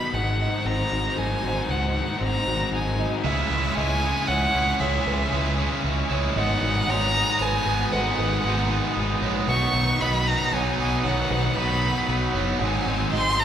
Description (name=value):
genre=post-rock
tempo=116 BPM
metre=3/4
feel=straight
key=unclear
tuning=A4 = 440 Hz
part: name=warm violin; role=melody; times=0.0-13.4 s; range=E5 to C#6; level=-26 LUFS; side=equal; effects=none
part: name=warm studio string section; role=sustained chords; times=0.0-13.4 s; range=G#3 to G#5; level=-35 LUFS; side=equal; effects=none
part: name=clean electric guitar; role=arpeggios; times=0.0-3.3 s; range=G#2 to F#4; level=-33 LUFS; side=left 2 dB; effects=none
part: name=felt-muted upright piano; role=arpeggios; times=0.0-13.4 s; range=A#4 to F#5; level=-34 LUFS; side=right 5 dB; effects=none
part: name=distorted electric guitar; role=riff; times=0.0-13.4 s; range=G#2 to E4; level=-28 LUFS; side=left 4 dB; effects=distortion
part: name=growling fingered electric bass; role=bass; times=0.1-13.4 s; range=F#1 to C#2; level=-27 LUFS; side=equal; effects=overdrive
part: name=cranked stack guitar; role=riff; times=3.2-13.4 s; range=G#2 to E4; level=-27 LUFS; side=right 6 dB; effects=overdrive, spring reverb
room=wet recital hall reverb, RT60 1.6 s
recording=recorded in a church or concert hall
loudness=-21 LUFS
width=side -9 dB against mid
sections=0.0-3.3 A section; 3.3-13.4 B section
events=build-up 0.0-3.3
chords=0.1 G#7; 3.3 C#m; 6.4 G#m7; 9.5 B; 12.6 G#7